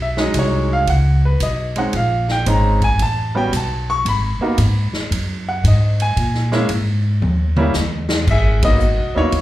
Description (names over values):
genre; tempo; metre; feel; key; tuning
jazz piano trio; 114 BPM; 4/4; swing 67% on 8ths; G# minor; A4 = 440 Hz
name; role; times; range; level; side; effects
bright grand piano; melody; 0.0-9.4 s; F#3 to C#6; -20 LUFS; equal; plate reverb
upright bass; bass; 0.0-9.4 s; G#1 to A#2; -17 LUFS; equal; none
swinging big-band drum kit; drums; 0.2-9.4 s; crash cymbal, hi-hat, kick drum, ride cymbal, snare drum, toms; -23 LUFS; equal; none
room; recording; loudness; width
light reverb; live gig heard through the venue's PA, club reverb; -15 LUFS; side -15 dB against mid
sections
0.0-8.3 A section; 8.3-9.4 B section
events
grand piano solo 0.0-8.3; drum fill 7.2-8.3; band accent 8.5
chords
0.0 B69; 1.9 A#m11; 3.0 A9; 4.0 G#m7; 6.2 A#7(no3); 7.2 D#5; 8.3 G#m9